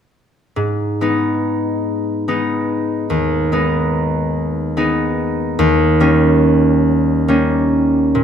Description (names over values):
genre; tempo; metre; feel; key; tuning
classical; 48 BPM (dotted quarters); 12/8; rubato; G# minor; A4 = 440 Hz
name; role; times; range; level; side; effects
concert harp; accompaniment; 0.6-8.2 s; D#2 to D#4; -14 LUFS; equal; none
room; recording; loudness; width
moderate stone room reverb, RT60 1.2 s; none; -14 LUFS; side -8 dB against mid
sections
0.6-8.2 A section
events
none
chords
0.6 G#m; 5.6 D#7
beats
| 0.56 1.85 3.09 4.34 | 5.58 6.86 8.15